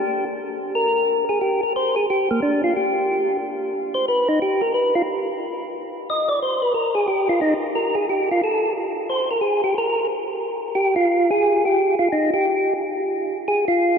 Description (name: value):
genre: jazz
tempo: 180 BPM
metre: 4/4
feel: swing 65% on 8ths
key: unclear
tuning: A4 = 436 Hz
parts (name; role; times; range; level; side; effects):
- percussive tonewheel organ; solo; 0.0-14.0 s; Bb3 to Eb5; -18 LUFS; equal; slow rotary speaker
room: wet cathedral reverb, RT60 6.4 s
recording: in a vast, echoing space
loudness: -18 LUFS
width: side -6 dB against mid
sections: 0.0-10.7 A section; 10.7-14.0 B section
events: tonewheel organ solo 0.0-10.7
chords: none